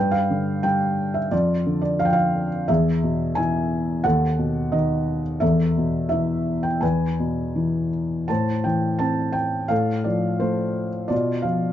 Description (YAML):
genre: classical, lyrical solo piano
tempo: 87 BPM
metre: 4/4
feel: rubato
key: unclear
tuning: A4 = 440 Hz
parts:
  - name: felt-muted upright piano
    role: solo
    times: 0.0-11.7 s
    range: D#2 to A5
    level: -20 LUFS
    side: equal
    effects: none
room: light reverb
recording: dark, warm production, nothing above 7.6 kHz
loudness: -20 LUFS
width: side -11 dB against mid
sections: 0.0-11.7 A section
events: none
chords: 0.0 G; 1.3 Dm/F; 2.7 E; 4.0 B7/D#; 5.4 Esus4; 6.8 E; 8.3 Am; 9.7 F/A; 11.1 Bdim